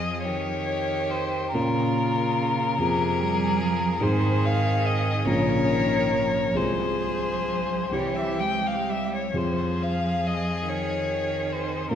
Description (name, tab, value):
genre	classical, slow romantic movement for piano quartet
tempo	42-50 BPM (dotted quarters)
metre	6/8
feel	rubato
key	F minor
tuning	A4 = 440 Hz
part	rich violin	melody	0.0-11.9 s	Bb4 to G5	-27 LUFS	left 3 dB	none
part	clear cello	second line	0.0-11.9 s	C3 to Ab3	-30 LUFS	right 5 dB	none
part	rich violin	second line	0.0-11.9 s	F4 to Bb4	-33 LUFS	equal	none
part	dark grand piano	accompaniment	0.0-11.9 s	Bb1 to Bb4	-26 LUFS	equal	none
room	wet concert hall reverb, RT60 1.8 s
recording	dark, warm production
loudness	-22 LUFS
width	side -9 dB against mid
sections	0.0-11.9 A section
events	none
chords	0.0 Fm; 1.6 Bbm; 2.8 Fm; 4.0 Ab; 5.3 Bbm; 6.6 Fm/C; 7.9 C; 9.4 Fm